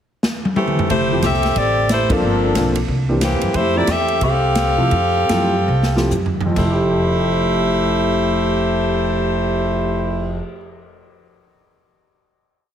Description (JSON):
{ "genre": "jazz, big band swing", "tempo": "128-182 BPM", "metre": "4/4", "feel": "swing 62% on 8ths", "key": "F major", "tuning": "A4 = 441 Hz", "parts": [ { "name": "swinging big-band drum kit", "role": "drums", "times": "0.2-10.2 s", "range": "crash cymbal, cymbal swell, hi-hat, kick drum, ride cymbal, snare drum, toms", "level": "-23 LUFS", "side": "equal", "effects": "none" }, { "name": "warm saxophone section", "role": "melody", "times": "0.6-10.4 s", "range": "E3 to F5", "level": "-18 LUFS", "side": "equal", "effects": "none" }, { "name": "upright bass", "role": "bass", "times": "0.9-10.4 s", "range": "F1 to C3", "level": "-22 LUFS", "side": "equal", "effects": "none" }, { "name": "warm concert grand piano", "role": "accompaniment", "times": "1.1-10.6 s", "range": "F2 to A4", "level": "-22 LUFS", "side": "equal", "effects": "none" } ], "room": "moderate recital hall reverb, RT60 1.9 s", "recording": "heavily compressed radio sound, multiband compression", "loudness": "-15 LUFS", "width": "side -9 dB against mid", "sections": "0.0-0.9 pickup bar; 0.9-6.6 A section; 6.6-10.3 final chord", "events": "drum fill 0.2-0.9, 5.7-6.6; band accent 2.1; slowing down 3.5-6.6", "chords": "0.0 Emadd11; 0.9 Fmaj9; 2.2 Gm11; 2.9 C7; 3.5 Fmaj9" }